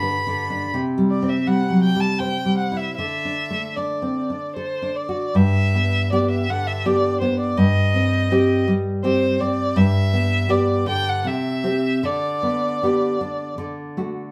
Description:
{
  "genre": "romantic duo for violin and classical guitar",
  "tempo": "75-84 BPM",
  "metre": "3/4",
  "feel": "rubato",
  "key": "G major",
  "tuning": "A4 = 439 Hz",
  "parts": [
    { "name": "rich violin", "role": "melody", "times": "0.0-13.6 s", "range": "C5 to B5", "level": "-26 LUFS", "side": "equal", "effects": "none" },
    { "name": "nylon-string guitar", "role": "accompaniment", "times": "0.0-14.3 s", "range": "G2 to C5", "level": "-22 LUFS", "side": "equal", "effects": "none" }
  ],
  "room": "moderate studio reverb, RT60 0.7 s",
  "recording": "band playing live in one room",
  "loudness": "-21 LUFS",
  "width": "mono",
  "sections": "0.0-5.4 A section; 5.4-14.3 B section",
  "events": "none",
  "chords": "0.0 G; 0.7 C5; 3.0 D5; 5.4 G; 7.6 Cm/G; 9.8 G; 11.3 C; 12.0 G/D; 13.6 D"
}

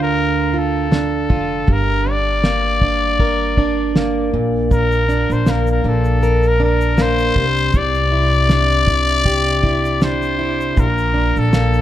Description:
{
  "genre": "acoustic pop",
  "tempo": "79 BPM",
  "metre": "4/4",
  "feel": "swing 55% on 16ths",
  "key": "unclear",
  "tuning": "A4 = 440 Hz",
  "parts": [
    { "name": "growling trumpet", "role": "melody", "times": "0.0-11.8 s", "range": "A4 to D5", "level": "-19 LUFS", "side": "left 3 dB", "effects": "plate reverb, tape echo" },
    { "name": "fingerpicked plugged-in steel-string acoustic guitar", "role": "accompaniment", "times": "0.0-11.8 s", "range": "G2 to Bb4", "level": "-19 LUFS", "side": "right 2 dB", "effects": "none" },
    { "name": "upright bass", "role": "bass", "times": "0.0-11.8 s", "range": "F1 to D2", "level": "-20 LUFS", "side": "equal", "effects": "none" },
    { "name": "cloth-damped thuddy drum kit", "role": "drums", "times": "0.9-11.8 s", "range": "kick drum, shaker, snare drum", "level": "-17 LUFS", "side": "equal", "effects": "none" }
  ],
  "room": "light reverb",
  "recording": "none",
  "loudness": "-14 LUFS",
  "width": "side -12 dB against mid",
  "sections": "0.0-10.8 A section; 10.8-11.8 B section",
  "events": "none",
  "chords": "0.0 Dm; 1.7 Gm; 4.3 Bb; 7.4 Cadd9; 10.8 Bb"
}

